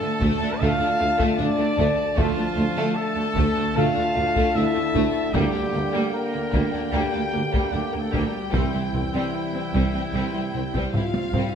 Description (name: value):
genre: cinematic, epic orchestral film score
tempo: 75 BPM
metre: 4/4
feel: straight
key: D minor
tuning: A4 = 440 Hz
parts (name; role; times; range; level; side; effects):
- warm studio violin section; melody; 0.0-11.6 s; F5 to A5; -33 LUFS; left 3 dB; none
- rich symphonic violin section; second line; 0.0-11.5 s; G3 to E4; -32 LUFS; left 3 dB; none
- rich symphonic viola section; accompaniment; 0.0-11.5 s; A3 to C4; -31 LUFS; left 1 dB; none
- clear trombone section; sustained chords; 0.0-11.4 s; C3 to Bb3; -32 LUFS; right 3 dB; none
- mellow French horn section; sustained chords; 0.0-11.6 s; E3 to G4; -30 LUFS; left 4 dB; none
- clear trumpet section; stabs; 0.0-11.6 s; E4 to G5; -27 LUFS; equal; none
- rich symphonic cello section; bass; 0.0-11.4 s; C2 to D2; -30 LUFS; right 3 dB; none
- mellow tuba; bass; 0.2-11.4 s; C2 to D2; -30 LUFS; right 4 dB; none
- rich symphonic double bass section; bass; 0.2-11.4 s; C2 to D2; -30 LUFS; right 3 dB; none
- taiko ensemble; drums; 0.2-11.6 s; none; -27 LUFS; left 1 dB; none
room: moderate scoring stage reverb, RT60 1.4 s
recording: none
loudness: -20 LUFS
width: side -7 dB against mid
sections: 0.0-11.6 A section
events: drum fill 10.9-11.6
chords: 0.0 Dm; 5.3 Gm/D; 8.5 C